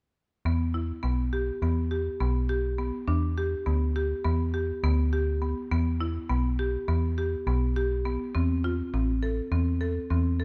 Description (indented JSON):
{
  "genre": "contemporary instrumental, chamber music in an uneven meter",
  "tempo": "205 BPM (eighths)",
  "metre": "9/8",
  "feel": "straight",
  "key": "E phrygian",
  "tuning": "A4 = 441 Hz",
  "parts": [
    { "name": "buzzing marimba with hard mallets", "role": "arpeggios", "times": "0.5-10.4 s", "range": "B3 to A4", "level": "-32 LUFS", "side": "equal", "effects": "none" },
    { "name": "metallic FM bass", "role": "bass", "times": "0.5-10.4 s", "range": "A1 to E2", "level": "-29 LUFS", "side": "equal", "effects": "none" }
  ],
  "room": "light reverb",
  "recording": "dark, warm production",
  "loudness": "-28 LUFS",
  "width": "mono",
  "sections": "0.5-10.4 A section",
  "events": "none",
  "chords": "0.5 Em; 3.1 G; 5.7 Em; 8.3 Am; 9.5 Am/E"
}